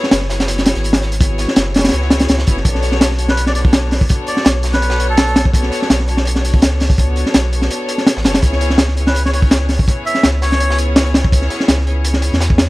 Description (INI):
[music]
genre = drum and bass, jungle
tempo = 166 BPM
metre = 4/4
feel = straight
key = B dorian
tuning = A4 = 440 Hz
[part]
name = dark chamber string section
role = sustained chords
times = 0.0-12.7 s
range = B3 to C#5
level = -22 LUFS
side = left 2 dB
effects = vintage 12-bit sampler grit
[part]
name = crunchy breakbeat drum kit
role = drums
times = 0.0-12.7 s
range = hi-hat, kick drum, snare drum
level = -14 LUFS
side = equal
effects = none
[part]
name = soft dub sub bass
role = bass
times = 0.1-12.7 s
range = F#1 to E2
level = -17 LUFS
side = equal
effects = none
[part]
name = crunchy breakbeat drum kit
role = drums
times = 0.1-12.7 s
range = hi-hat, snare drum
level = -28 LUFS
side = right 1 dB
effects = high-pass filter on hats, high-pass filter on snare, high-pass filter on room
[part]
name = melodica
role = melody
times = 3.3-5.5, 9.1-10.8 s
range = A4 to E5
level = -22 LUFS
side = equal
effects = dub echo
[sound]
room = studio ambience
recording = dry, gritty hardware recording, faint mains hum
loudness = -12 LUFS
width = side -20 dB against mid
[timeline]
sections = 0.0-2.7 A section; 2.7-12.7 A section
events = drop 0.0-2.7, 2.7-12.7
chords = 0.0 F#9sus4; 2.7 Bm9; 8.4 C#m7